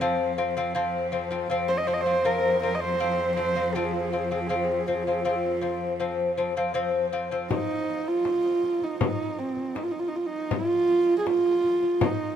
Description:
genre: mongolian traditional, Mongolian folk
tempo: 80 BPM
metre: 4/4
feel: straight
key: F yu mode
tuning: A4 = 440 Hz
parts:
  - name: dark horsehead fiddle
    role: melody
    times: 0.0-12.4 s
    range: C4 to Eb5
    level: -25 LUFS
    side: right 2 dB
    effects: none
  - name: lute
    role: arpeggios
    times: 0.0-7.5 s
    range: F3 to C4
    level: -26 LUFS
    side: left 3 dB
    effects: none
  - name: bright cello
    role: drone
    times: 0.0-7.6 s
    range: F2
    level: -35 LUFS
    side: equal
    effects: none
  - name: frame drum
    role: percussion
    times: 7.5-12.2 s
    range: none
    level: -29 LUFS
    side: left 5 dB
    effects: none
room: moderate huge ambient reverb, RT60 7.2 s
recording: minimal, uncompressed stereo recording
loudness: -23 LUFS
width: side -9 dB against mid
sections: 0.0-7.5 A section; 7.5-12.4 B section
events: none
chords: 0.0 F5; 7.5 N.C.

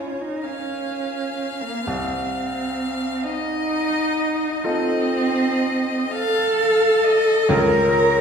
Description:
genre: classical, slow romantic movement for piano trio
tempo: 43 BPM (dotted quarters)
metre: 12/8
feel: rubato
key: unclear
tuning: A4 = 440 Hz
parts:
  - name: rich violin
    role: melody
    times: 0.0-8.2 s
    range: Db5 to F5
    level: -27 LUFS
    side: left 5 dB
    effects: none
  - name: warm cello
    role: second line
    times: 0.0-8.2 s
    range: Bb3 to Bb4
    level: -20 LUFS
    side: right 1 dB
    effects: none
  - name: bright baby grand piano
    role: accompaniment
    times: 0.0-8.2 s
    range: Bb1 to Bb4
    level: -26 LUFS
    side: left 1 dB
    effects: none
room: wet recital hall reverb, RT60 1.7 s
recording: recorded in a church or concert hall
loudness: -19 LUFS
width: side -6 dB against mid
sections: 0.0-8.2 A section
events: none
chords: 0.0 Bbm; 1.9 F7/C; 7.5 Bbm/Db

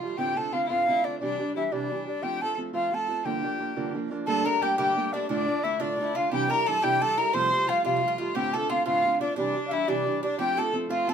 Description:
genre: celtic folk, Celtic jig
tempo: 118 BPM (dotted quarters)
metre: 6/8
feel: straight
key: G dorian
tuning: A4 = 436 Hz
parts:
  - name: rich fiddle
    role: second line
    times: 0.0-11.1 s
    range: D4 to C5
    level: -32 LUFS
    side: left 5 dB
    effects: none
  - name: fingerpicked steel-string acoustic guitar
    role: accompaniment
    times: 0.0-11.1 s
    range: D2 to G4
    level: -30 LUFS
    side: right 5 dB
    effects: none
  - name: bright baroque flute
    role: melody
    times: 0.2-11.1 s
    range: D5 to C6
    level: -26 LUFS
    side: left 1 dB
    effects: none
  - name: Irish bouzouki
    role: second line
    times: 4.3-11.1 s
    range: D4 to C5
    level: -33 LUFS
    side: right 1 dB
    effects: none
room: moderate small room reverb, RT60 0.5 s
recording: minimal, uncompressed stereo recording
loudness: -24 LUFS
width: side -7 dB against mid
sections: 0.0-4.3 A section; 4.3-11.1 A section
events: none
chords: 0.2 Dm7; 1.2 Cadd9; 2.2 F; 3.2 Gm7; 4.3 Gmadd9; 5.3 Dm; 6.3 Cadd9; 7.3 Fadd9; 8.4 Dm7; 9.4 Cadd9; 10.4 F

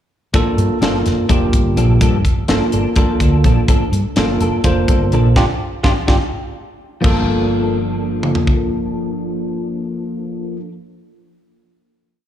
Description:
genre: electric jazz fusion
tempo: 251 BPM (eighths)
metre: 7/8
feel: straight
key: G minor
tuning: A4 = 440 Hz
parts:
  - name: bell-like tine electric piano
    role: accompaniment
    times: 0.3-10.6 s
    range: Bb3 to C5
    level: -20 LUFS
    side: right 1 dB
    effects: slapback echo
  - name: clean electric guitar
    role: stabs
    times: 0.3-10.7 s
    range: F3 to A4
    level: -22 LUFS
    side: left 3 dB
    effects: ensemble chorus, slapback echo
  - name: woody fretless electric bass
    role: bass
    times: 0.3-10.6 s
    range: F1 to G2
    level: -18 LUFS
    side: equal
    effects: none
  - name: tight funk drum kit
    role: drums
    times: 0.3-8.6 s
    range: crash cymbal, hi-hat, kick drum, snare drum, toms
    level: -17 LUFS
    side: equal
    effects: none
room: light reverb, small room ambience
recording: live gig heard through the venue's PA, club reverb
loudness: -14 LUFS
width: side -10 dB against mid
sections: 0.3-7.0 groove; 7.0-10.4 final chord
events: band accent 5.4-7.0; drum fill 5.6-7.0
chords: 0.3 Gm9

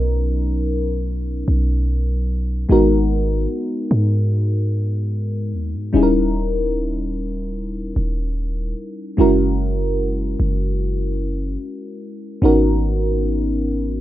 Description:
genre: contemporary R&B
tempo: 74 BPM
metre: 4/4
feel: straight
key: G# minor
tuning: A4 = 440 Hz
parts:
  - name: mellow FM electric piano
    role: accompaniment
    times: 0.0-14.0 s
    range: F#3 to A#4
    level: -21 LUFS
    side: left 1 dB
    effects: chorus, phaser
  - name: warm 808-style bass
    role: bass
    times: 0.0-14.0 s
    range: D#1 to G#2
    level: -20 LUFS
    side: equal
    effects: none
room: light reverb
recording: rough home demo mix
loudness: -17 LUFS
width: side -14 dB against mid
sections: 0.0-14.0 A section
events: none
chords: 0.0 Bmaj7; 2.7 G#m9; 5.9 D#7b9; 9.2 F#9; 12.4 G#m11

